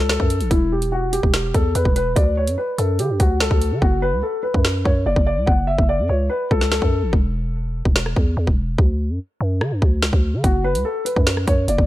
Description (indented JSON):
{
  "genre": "hip hop, drill",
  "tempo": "145 BPM",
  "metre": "4/4",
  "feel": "half-time",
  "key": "unclear",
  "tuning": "A4 = 441 Hz",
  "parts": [
    { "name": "dark concert grand piano", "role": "melody", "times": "0.0-7.1, 10.4-11.9 s", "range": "E4 to F#5", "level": "-22 LUFS", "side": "left 1 dB", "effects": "ping-pong delay" },
    { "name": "growling 808-style bass", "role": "bass", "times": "0.0-11.9 s", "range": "E1 to D3", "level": "-21 LUFS", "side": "equal", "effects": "none" },
    { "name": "drill drum kit", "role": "drums", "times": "0.1-11.9 s", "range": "hi-hat, kick drum, rim click, snare drum", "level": "-18 LUFS", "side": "equal", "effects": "none" }
  ],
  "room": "digital ambience",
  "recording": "none",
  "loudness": "-17 LUFS",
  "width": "side -15 dB against mid",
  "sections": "0.0-11.9 A section",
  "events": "hi-hats muted 3.8-10.4",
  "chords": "0.0 F#m; 0.5 Em; 2.2 D; 3.8 F#m; 7.1 N.C.; 8.8 D; 10.4 N.C."
}